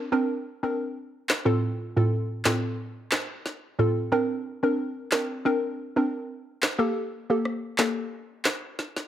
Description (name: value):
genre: dancehall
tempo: 90 BPM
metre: 4/4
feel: straight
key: Bb major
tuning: A4 = 439 Hz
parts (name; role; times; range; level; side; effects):
- hollow square pluck; accompaniment; 0.0-8.1 s; A2 to Bb4; -25 LUFS; equal; chorus
- electronic handclaps, snare drum and rim click; drums; 1.3-9.1 s; none; -26 LUFS; equal; overdrive
room: light reverb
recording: none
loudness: -25 LUFS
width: side -11 dB against mid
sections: 0.0-9.1 A section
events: drum fill 8.8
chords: 0.0 Bbadd9; 1.5 F/A; 4.1 Bbadd9; 6.8 Gmadd9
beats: 0.12 0.79 | 1.45 2.12 2.79 3.45 | 4.12 4.79 5.45 6.12 | 6.79 7.45 8.12 8.79